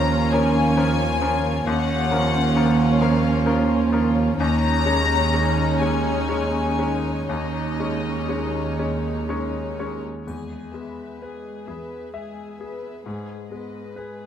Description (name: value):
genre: cinematic, emotional film score for orchestra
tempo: 40-45 BPM (dotted quarters)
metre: 6/8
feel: rubato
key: unclear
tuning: A4 = 440 Hz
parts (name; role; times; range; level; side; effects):
- warm symphonic violin section; melody; 0.0-14.3 s; Cb5 to Bb5; -27 LUFS; left 5 dB; none
- warm symphonic violin section; second line; 0.0-14.3 s; Eb4 to Db5; -30 LUFS; left 4 dB; none
- bright grand piano; accompaniment; 0.0-14.3 s; Eb2 to E5; -28 LUFS; left 3 dB; none
- dark symphonic viola section; accompaniment; 0.0-14.3 s; G#3 to Db4; -26 LUFS; right 1 dB; none
- dark symphonic double bass section; bass; 0.0-10.0 s; Eb2; -25 LUFS; right 3 dB; none
- warm symphonic cello section; bass; 0.0-14.2 s; Eb2 to Ab2; -27 LUFS; right 4 dB; none
- triangle; percussion; 10.3-12.1 s; none; -61 LUFS; left 1 dB; none
room: moderate concert hall reverb, RT60 1.9 s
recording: close, detailed microphones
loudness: -19 LUFS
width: side -9 dB against mid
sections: 0.0-10.3 A section; 10.3-14.3 B section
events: none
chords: 0.0 Bbm/Eb; 4.4 Dbsus2/Eb; 10.3 E; 13.1 Abm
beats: 0.34 | 1.68 3.02 | 4.39 5.81 | 7.30 8.79 | 10.27 11.67 | 13.05